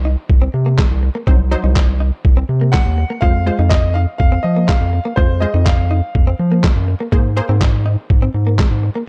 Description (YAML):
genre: dance-pop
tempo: 123 BPM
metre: 4/4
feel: straight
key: unclear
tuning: A4 = 440 Hz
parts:
  - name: unison pluck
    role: accompaniment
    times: 0.0-7.8 s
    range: Gb3 to C5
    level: -26 LUFS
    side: equal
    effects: sidechain pumping
  - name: round analog bass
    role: bass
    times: 0.0-8.9 s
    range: C2 to F3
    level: -18 LUFS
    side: equal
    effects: sidechain pumping
  - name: direct-recorded clean electric guitar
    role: riff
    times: 0.1-9.0 s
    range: Ab3 to F4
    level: -28 LUFS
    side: equal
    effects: lush chorus
  - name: trip hop sampler-style drum kit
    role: drums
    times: 0.3-8.7 s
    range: handclaps, kick drum, snare drum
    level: -17 LUFS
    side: equal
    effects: none
  - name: clear grand piano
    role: melody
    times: 2.7-6.8 s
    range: C5 to Gb5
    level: -25 LUFS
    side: equal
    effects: none
room: digital ambience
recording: dark, warm production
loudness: -15 LUFS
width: mono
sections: 0.0-9.1 A section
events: none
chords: 0.0 Cdim; 3.2 Fm; 7.1 Abadd9